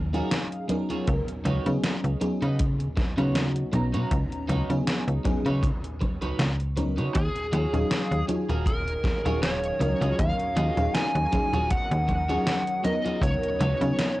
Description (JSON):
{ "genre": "vaporwave", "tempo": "79 BPM", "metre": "4/4", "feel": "swing 55% on 16ths", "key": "Eb minor", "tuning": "A4 = 439 Hz", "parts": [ { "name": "slap-like FM bass", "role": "bass", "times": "0.0-13.9 s", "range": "Eb1 to Db3", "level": "-26 LUFS", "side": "equal", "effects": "none" }, { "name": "FM electric piano with soft pad layer", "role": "accompaniment", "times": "0.1-14.2 s", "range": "Gb3 to Bb5", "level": "-30 LUFS", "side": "equal", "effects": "analog chorus, cassette tape, tape echo" }, { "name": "electric guitar at the edge of break-up", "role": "riff", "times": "0.1-13.8 s", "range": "Eb4 to Eb5", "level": "-36 LUFS", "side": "right 2 dB", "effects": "lush chorus, cassette tape, tape echo" }, { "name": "gated 80s digital drum machine", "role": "drums", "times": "0.1-14.2 s", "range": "congas, hi-hat, snare drum", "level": "-31 LUFS", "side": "equal", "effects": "gated reverb, gated reverb snare, overdrive, vintage 12-bit sampler grit" }, { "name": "kick drum", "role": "drums", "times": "1.1-13.4 s", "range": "none", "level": "-30 LUFS", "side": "equal", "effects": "vintage 12-bit sampler grit" }, { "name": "biting lead guitar", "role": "melody", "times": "7.1-14.2 s", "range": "Ab4 to Ab5", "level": "-28 LUFS", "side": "equal", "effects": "overdrive, vintage 12-bit sampler grit, tape echo" }, { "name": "lush unison pad", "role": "sustained chords", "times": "7.2-14.2 s", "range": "Db3 to Eb5", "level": "-40 LUFS", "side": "equal", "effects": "chorus, cassette tape" } ], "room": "light reverb", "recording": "home recording on cassette", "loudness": "-23 LUFS", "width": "side -17 dB against mid", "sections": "0.0-14.2 A section", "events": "none", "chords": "0.0 Ebm11; 1.1 Db9sus4; 7.1 Ebm11; 13.2 Db9sus4", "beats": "0.31 | 1.07 1.83 2.59 3.35 | 4.11 4.87 5.63 6.39 | 7.15 7.91 8.67 9.43 | 10.19 10.95 11.71 12.46 | 13.22 13.98" }